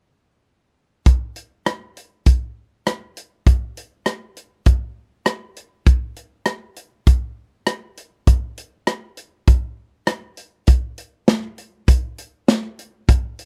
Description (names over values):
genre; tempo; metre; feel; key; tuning
country; 100 BPM; 4/4; straight; none; none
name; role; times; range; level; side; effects
natural country drum kit; drums; 1.1-13.5 s; hi-hat, kick drum, rim click, snare drum; -17 LUFS; equal; none
room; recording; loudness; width
little or no reverb; dry, close 1970s-style studio recording; -21 LUFS; mono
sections
1.1-10.7 A section; 10.7-13.5 B section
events
none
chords
none